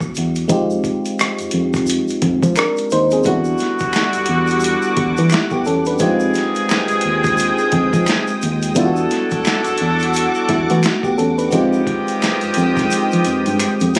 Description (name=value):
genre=R&B, neo-soul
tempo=87 BPM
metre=4/4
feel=swing 60% on 16ths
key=unclear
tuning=A4 = 440 Hz
part: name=FM electric piano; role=accompaniment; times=0.0-14.0 s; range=G3 to C5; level=-21 LUFS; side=equal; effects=none
part: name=boom bap sampler-style drum kit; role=drums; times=0.0-14.0 s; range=hi-hat, kick drum, rim click, snare drum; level=-24 LUFS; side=equal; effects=none
part: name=tube shaker and finger snaps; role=percussion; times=0.0-14.0 s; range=none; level=-32 LUFS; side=equal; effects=none
part: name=tine electric piano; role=bass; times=0.2-14.0 s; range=Eb2 to F3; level=-22 LUFS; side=equal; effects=none
part: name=soft string machine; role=sustained chords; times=3.7-14.0 s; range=G3 to Eb6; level=-27 LUFS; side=equal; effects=ensemble chorus
part: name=clear horn section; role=stabs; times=3.2-13.9 s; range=D3 to A4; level=-23 LUFS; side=equal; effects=none
room=studio ambience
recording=recorded on a phone in the room, studio reverb, compression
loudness=-17 LUFS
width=mono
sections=0.0-14.0 A section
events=drum fill 12.9-14.0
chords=0.5 Fm9; 3.2 Em9; 6.0 Fm9; 8.8 Em9; 11.5 Fm9